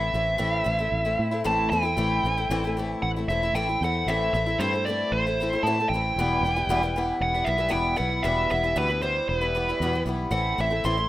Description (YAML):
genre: folk rock and heartland rock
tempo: 115 BPM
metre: 4/4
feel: straight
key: unclear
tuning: A4 = 442 Hz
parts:
  - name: dark smooth lead guitar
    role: melody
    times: 0.0-11.1 s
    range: B4 to C6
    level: -25 LUFS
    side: right 1 dB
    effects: overdrive, slapback echo
  - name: picked twelve-string acoustic guitar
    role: accompaniment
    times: 0.0-11.1 s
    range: E2 to E4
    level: -28 LUFS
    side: left 2 dB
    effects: none
  - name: fingered electric bass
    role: bass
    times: 0.0-11.1 s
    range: E1 to A2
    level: -29 LUFS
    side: right 1 dB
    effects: none
room: light reverb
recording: rough home demo mix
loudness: -22 LUFS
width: side -15 dB against mid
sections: 0.0-2.0 A section; 2.0-11.1 B section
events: none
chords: 0.0 Am; 6.1 Em; 10.3 Am